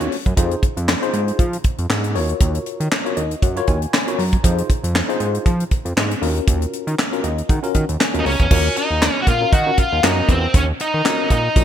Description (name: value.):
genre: early-eighties boogie funk.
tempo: 118 BPM.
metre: 4/4.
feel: swing 56% on 16ths.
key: Eb dorian.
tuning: A4 = 440 Hz.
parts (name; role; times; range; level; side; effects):
tine electric piano; accompaniment; 0.0-11.6 s; Db4 to Bb5; -25 LUFS; left 3 dB; overdrive, fast stereo tremolo.
fat analog bass; bass; 0.0-11.6 s; Bb1 to F3; -21 LUFS; right 1 dB; none.
tight funk drum kit; drums; 0.0-11.6 s; crash cymbal, handclaps, hi-hat, kick drum, snare drum; -18 LUFS; equal; gated reverb.
octave-fuzz lead guitar; melody; 8.2-11.6 s; C4 to Gb4; -19 LUFS; equal; distortion.
room: light reverb.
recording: bright 1980s-style digital production.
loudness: -16 LUFS.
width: side -10 dB against mid.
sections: 0.0-8.5 A section; 8.5-11.6 B section.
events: tine electric piano fill 2.9-4.4, 7.0-8.5.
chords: 0.4 Fm7; 2.2 Ebm7; 4.4 Fm7; 6.2 Ebm7; 8.5 Ebm9.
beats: | 0.37 0.88 1.39 1.90 | 2.41 2.92 3.42 3.93 | 4.44 4.95 5.46 5.97 | 6.47 6.98 7.49 8.00 | 8.51 9.02 9.53 10.04 | 10.54 11.05 11.56.